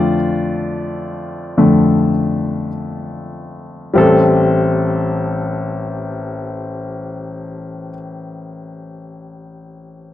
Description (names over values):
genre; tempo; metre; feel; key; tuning
pop; free time; none; none; A minor; A4 = 437 Hz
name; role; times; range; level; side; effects
bright concert grand piano; accompaniment; 0.0-10.1 s; A1 to D5; -16 LUFS; left 1 dB; none
room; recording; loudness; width
light reverb; dry, close 1970s-style studio recording; -14 LUFS; side -12 dB against mid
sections
0.0-4.0 A section; 4.0-9.0 B section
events
slowing down 0.0-4.0; grand piano solo 0.0-4.0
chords
0.0 F6; 4.0 Am7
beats
free time